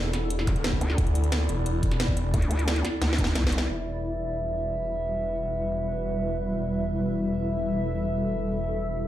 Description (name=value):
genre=dark technical drum and bass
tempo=177 BPM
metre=4/4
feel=straight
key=E minor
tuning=A4 = 440 Hz
part: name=phased detuned saw bass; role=bass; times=0.0-9.1 s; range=E1 to D2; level=-29 LUFS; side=equal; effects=phaser, overdrive
part: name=granular cloud pad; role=texture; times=0.0-9.1 s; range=G3 to F#5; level=-33 LUFS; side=equal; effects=built-in reverb, sidechain pumping
part: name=drum and bass drum kit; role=drums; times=0.1-3.6 s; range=hi-hat, snare drum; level=-30 LUFS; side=equal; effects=none
part: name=electronic kick drum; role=drums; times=0.5-3.5 s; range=none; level=-26 LUFS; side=equal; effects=none
part: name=zap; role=sound effects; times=0.5-0.6 s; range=none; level=-34 LUFS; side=equal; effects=none
part: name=vowel-sweep wobble bass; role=bass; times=0.8-3.7 s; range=C2 to D2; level=-25 LUFS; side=equal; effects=chorus, tube saturation
part: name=dark brass ensemble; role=stabs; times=1.9-9.1 s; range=D4 to E5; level=-32 LUFS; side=equal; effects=dub echo
part: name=dark analog pad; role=sustained chords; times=3.7-9.1 s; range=G3 to E5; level=-32 LUFS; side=left 1 dB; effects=chorus, sidechain pumping
room=light reverb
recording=played on a big sound system in a bare room, large studio reverb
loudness=-24 LUFS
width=side -13 dB against mid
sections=0.0-3.7 A section; 3.7-9.1 B section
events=drum fill 3.0-3.7; band accent 3.6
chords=0.0 Dadd9; 3.7 Emadd9